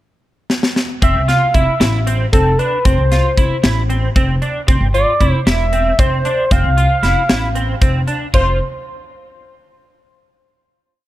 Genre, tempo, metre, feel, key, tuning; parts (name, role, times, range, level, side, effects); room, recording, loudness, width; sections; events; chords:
progressive instrumental, band music in an uneven meter; 230 BPM (eighths); 7/8; straight; F lydian; A4 = 441 Hz
tight metal drum kit; drums; 0.5-8.5 s; crash cymbal, hi-hat, kick drum, snare drum; -17 LUFS; equal
octave-doubled lead; melody; 1.0-8.6 s; A4 to F5; -18 LUFS; equal; chorus
twelve-string electric guitar; arpeggios; 1.0-8.6 s; C4 to F4; -22 LUFS; right 2 dB; ensemble chorus
upright bass; bass; 1.0-8.6 s; E1 to C2; -17 LUFS; equal
studio reverb; -12 LUFS; side -15 dB against mid
0.0-1.0 pickup bar; 1.0-8.3 A section; 8.3-10.2 final chord
drum fill 0.5-1.0
0.0 N.C.; 1.0 Fmaj7; 4.7 Cadd9; 6.5 Fmaj7; 8.3 F5